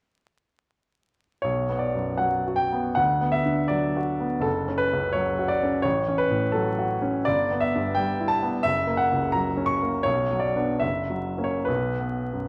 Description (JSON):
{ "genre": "classical, romantic character piece for solo piano", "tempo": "60-88 BPM", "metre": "2/4", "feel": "rubato", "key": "B minor", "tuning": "A4 = 440 Hz", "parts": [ { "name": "clear baby grand piano", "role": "solo", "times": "1.4-12.5 s", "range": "F#1 to C#6", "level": "-25 LUFS", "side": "equal", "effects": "none" } ], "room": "moderate recital hall reverb, RT60 1.6 s", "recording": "vinyl crackle", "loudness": "-25 LUFS", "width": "mono", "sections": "1.4-12.5 A section", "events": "none", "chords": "1.4 B5; 3.0 Bm/D; 4.5 F#5; 5.9 F#m/A; 7.3 Em/G; 8.7 F#; 10.1 Bm; 10.8 F#7; 11.7 B5", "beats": "| 1.45 2.22 | 2.98 3.72 | 4.46 5.16 | 5.85 6.55 | 7.26 7.96 | 8.65 9.35 | 10.07 10.83 | 11.68" }